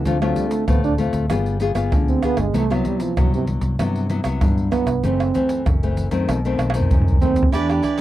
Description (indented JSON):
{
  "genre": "samba and choro",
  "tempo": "96 BPM",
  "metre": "4/4",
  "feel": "straight",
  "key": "unclear",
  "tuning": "A4 = 437 Hz",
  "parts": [
    { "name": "dark trombone", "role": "second line", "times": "0.0-8.0 s", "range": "C3 to D4", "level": "-22 LUFS", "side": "right 6 dB", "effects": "none" },
    { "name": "nylon-string guitar", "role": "accompaniment", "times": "0.0-8.0 s", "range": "F#2 to Ab4", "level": "-23 LUFS", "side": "left 4 dB", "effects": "none" },
    { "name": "fingered electric bass", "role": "bass", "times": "0.0-7.8 s", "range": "F#1 to G2", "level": "-23 LUFS", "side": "equal", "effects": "none" },
    { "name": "egg shaker, surdo, pandeiro and tamborim", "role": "percussion", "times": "0.1-8.0 s", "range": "none", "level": "-21 LUFS", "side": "equal", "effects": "none" },
    { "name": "cavaquinho", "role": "accompaniment", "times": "7.5-8.0 s", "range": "E4 to D5", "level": "-25 LUFS", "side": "right 5 dB", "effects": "none" }
  ],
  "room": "light reverb",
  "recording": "dry, close 1970s-style studio recording",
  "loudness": "-17 LUFS",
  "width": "side -14 dB against mid",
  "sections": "0.0-8.0 A section",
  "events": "trombone solo 0.0-8.0; drum fill 6.6-7.5",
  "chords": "0.1 Dm7; 1.3 G7b9; 2.5 Cmaj7#11; 5.0 F#m7b5; 6.3 B7b9"
}